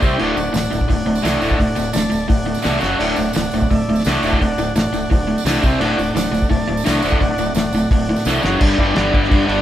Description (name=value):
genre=garage rock duo or trio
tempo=171 BPM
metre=4/4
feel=straight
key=D mixolydian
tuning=A4 = 441 Hz
part: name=combo organ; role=sustained chords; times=0.0-9.6 s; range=F#4 to A5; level=-24 LUFS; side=right 2 dB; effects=none
part: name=raw garage guitar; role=riff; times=0.0-9.6 s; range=D2 to C4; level=-18 LUFS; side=left 1 dB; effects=overdrive, spring reverb
part: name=growling fingered electric bass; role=bass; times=0.0-9.6 s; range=D1 to G2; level=-25 LUFS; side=equal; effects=overdrive
part: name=cloth-damped thuddy drum kit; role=drums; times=0.0-9.6 s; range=crash cymbal, hi-hat, kick drum, snare drum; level=-20 LUFS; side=equal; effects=none
part: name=tambourine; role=percussion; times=0.0-8.6 s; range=none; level=-32 LUFS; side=right 5 dB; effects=none
room=light reverb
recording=band playing live in one room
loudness=-15 LUFS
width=side -12 dB against mid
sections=0.0-8.6 A section; 8.6-9.6 B section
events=transistor combo organ fill 0.0; drum fill 2.8, 8.3-8.6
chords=0.0 C5; 0.2 D; 2.8 F#5; 3.0 D; 5.6 C5; 5.8 D; 8.4 F#5; 8.6 G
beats=| 0.21 0.56 0.91 1.26 | 1.61 1.96 2.31 2.66 | 3.01 3.36 3.71 4.06 | 4.41 4.76 5.11 5.46 | 5.81 6.16 6.51 6.86 | 7.21 7.56 7.91 8.26 | 8.61 8.96 9.31